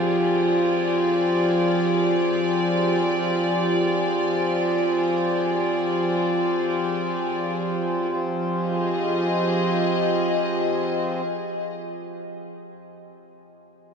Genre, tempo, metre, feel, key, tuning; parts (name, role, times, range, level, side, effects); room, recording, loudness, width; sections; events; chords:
ambient; free time; F dorian; A4 = 438 Hz
warm studio string section; sustained chords; 0.0-11.7 s; F3 to Eb5; -22 LUFS; equal
hand-pumped harmonium; drone; 0.0-11.2 s; F3 to C4; -28 LUFS; equal
wet cathedral reverb, RT60 6.1 s; in a vast, echoing space, cassette tape; -20 LUFS; side -6 dB against mid
0.0-8.1 A section; 8.1-11.0 B section
0.0 Fm; 8.1 Fm7